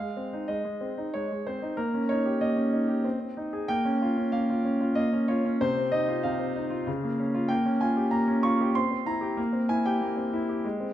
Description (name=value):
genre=classical-period piano sonatina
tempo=94 BPM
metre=3/4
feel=rubato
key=Ab major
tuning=A4 = 439 Hz
part: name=clear concert grand piano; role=solo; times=0.0-10.9 s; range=C3 to Db6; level=-25 LUFS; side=equal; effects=none
room=wet recital hall reverb, RT60 1.4 s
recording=none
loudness=-25 LUFS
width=side -12 dB against mid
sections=0.0-10.9 A section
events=none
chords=0.0 Ab; 1.8 Eb7/Bb; 3.0 Ab/C; 3.7 Bbm; 5.6 F5/C; 6.9 Bbm/Db; 7.5 Gm7b5/Bb; 8.8 C; 9.4 C7/Bb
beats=0.48 1.13 | 1.77 2.41 3.05 | 3.70 4.34 4.97 | 5.62 6.25 6.88 | 7.50 8.13 8.76 | 9.38 10.01 10.65